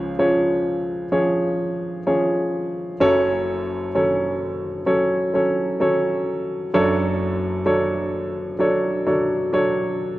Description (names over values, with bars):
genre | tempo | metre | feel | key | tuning
folk | 64 BPM | 4/4 | straight | F# minor | A4 = 440 Hz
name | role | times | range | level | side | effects
warm upright piano | solo | 0.0-10.2 s | F#1 to C#5 | -19 LUFS | equal | none
room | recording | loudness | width
moderate scoring stage reverb, RT60 2.0 s | worn, warbling old tape, cassette tape, warbly pitch drift | -19 LUFS | side -16 dB against mid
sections
0.0-3.0 A section; 3.0-10.2 B section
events
none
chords
0.0 C#; 3.0 F#m; 6.7 Dmaj7/F#